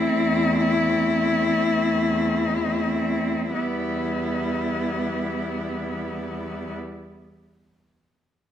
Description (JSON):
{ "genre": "classical, lyrical piece for cello ensemble", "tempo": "31-40 BPM", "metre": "4/4", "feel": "rubato", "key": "E minor", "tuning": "A4 = 440 Hz", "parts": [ { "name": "rich cello", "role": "melody", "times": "0.0-6.7 s", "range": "E4", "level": "-25 LUFS", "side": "left 4 dB", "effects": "none" }, { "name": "clear cello", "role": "second line", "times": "0.0-6.7 s", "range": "B3 to C4", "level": "-29 LUFS", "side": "right 6 dB", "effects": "none" }, { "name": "clear cello", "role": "accompaniment", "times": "0.0-6.8 s", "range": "G3 to A3", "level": "-28 LUFS", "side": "left 1 dB", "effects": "none" }, { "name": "rich cello", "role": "bass", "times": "0.1-6.8 s", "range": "E2", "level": "-29 LUFS", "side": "right 2 dB", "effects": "none" } ], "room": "wet recital hall reverb, RT60 1.4 s", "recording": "none", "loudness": "-21 LUFS", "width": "side -10 dB against mid", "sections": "0.0-3.6 A section; 3.6-8.5 B section", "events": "slowing down 0.0-3.6", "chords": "0.0 Am/E; 3.6 Em", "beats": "0.09 1.71 | 3.55 5.31" }